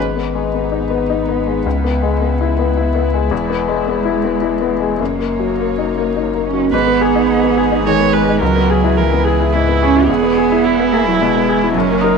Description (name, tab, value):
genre	neoclassical piano and strings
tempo	107 BPM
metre	3/4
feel	rubato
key	G# minor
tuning	A4 = 441 Hz
part	dark cello	second line	0.0-12.2 s	E3 to C#4	-18 LUFS	right 10 dB	none
part	bright upright piano	accompaniment	0.0-12.2 s	C#2 to A#4	-17 LUFS	left 12 dB	none
part	warm chamber string section	sustained chords	0.0-12.2 s	G#3 to C#5	-27 LUFS	right 8 dB	none
part	warm sub bass	bass	0.0-12.2 s	E1 to C#2	-22 LUFS	left 2 dB	none
part	warm viola	accompaniment	6.7-12.2 s	C#4 to C#5	-18 LUFS	right 8 dB	none
room	moderate plate reverb, RT60 2.8 s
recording	1960s-style stereo with parts hard left and right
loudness	-13 LUFS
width	side -5 dB against mid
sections	0.0-6.7 A section; 6.7-12.2 B section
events	none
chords	0.0 G#m; 1.7 C#m7; 3.3 E; 5.0 F#6; 6.7 G#m; 8.4 C#m7; 10.1 E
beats	0.53 1.09 | 1.65 2.21 2.77 | 3.32 3.86 4.42 | 5.00 5.58 6.16 | 6.73 7.29 7.86 | 8.41 8.97 9.53 | 10.08 10.64 11.20 | 11.75